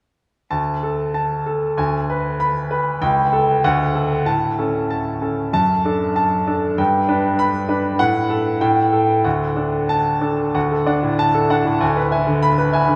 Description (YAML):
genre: classical, virtuoso piano study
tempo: 96 BPM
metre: 2/4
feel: rubato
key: D major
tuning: A4 = 439 Hz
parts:
  - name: clear baby grand piano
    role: solo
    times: 0.5-13.0 s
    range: C#2 to B5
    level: -19 LUFS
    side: equal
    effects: none
room: wet cathedral reverb, RT60 5.2 s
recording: recorded in a church or concert hall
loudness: -19 LUFS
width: mono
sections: 0.5-10.5 A section; 10.5-13.0 A section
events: none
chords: 0.5 D5; 1.8 G#dim/D; 3.0 A7/C#; 3.6 D; 4.3 A; 5.5 D/F#; 6.8 G; 8.0 F#m/A; 8.6 Gsus2/A; 9.2 D; 11.8 E7/D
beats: | 0.51 1.15 | 1.77 2.40 | 3.01 3.63 | 4.26 4.90 | 5.54 6.16 | 6.79 7.39 | 8.00 8.62 | 9.25 9.90 | 10.55 11.19 | 11.81 12.43